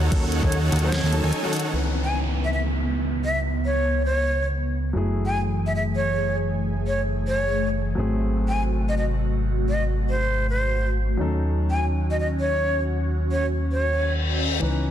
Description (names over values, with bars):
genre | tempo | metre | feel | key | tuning
future bass | 149 BPM | 4/4 | swing 54% on 16ths, half-time | C# minor | A4 = 438 Hz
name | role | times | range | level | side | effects
airy breathy pad | sustained chords | 0.0-14.9 s | B#2 to G#4 | -30 LUFS | equal | chorus, phaser, sidechain pumping
supersaw chords | riff | 0.0-1.7 s | D#3 to A5 | -29 LUFS | right 1 dB | sidechain pumping, low-pass filter, tape echo
fat analog bass | bass | 0.0-14.9 s | F#1 to D#2 | -24 LUFS | equal | sidechain pumping
dark grand piano | accompaniment | 0.1-14.9 s | E3 to B4 | -32 LUFS | left 2 dB | sidechain pumping, tape echo
electronic kick drum | drums | 0.1-0.5 s | none | -22 LUFS | equal | overdrive
pop drum kit | drums | 0.1-1.7 s | crash cymbal, hi-hat, snare drum | -31 LUFS | equal | overdrive
breathy jazz flute | melody | 0.4-14.1 s | B#4 to G#5 | -27 LUFS | equal | sidechain pumping, tape echo
downlifter and reverse cymbal | sound effects | 1.7-5.0, 14.0-14.6 s | none | -31 LUFS | left 2 dB | none
room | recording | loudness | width
light reverb, digital ambience | dense, heavily limited modern master | -21 LUFS | side -10 dB against mid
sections
0.0-1.7 A section; 1.7-14.9 B section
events
drop 0.0-1.7; break 1.3-1.7; filter sweep on analog synth pad 1.7-14.9; reverse cymbal 14.0-14.6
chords
0.0 D#m7b5; 1.7 C#m9; 5.0 F#m9; 8.0 G#7b9; 11.2 D#m7b5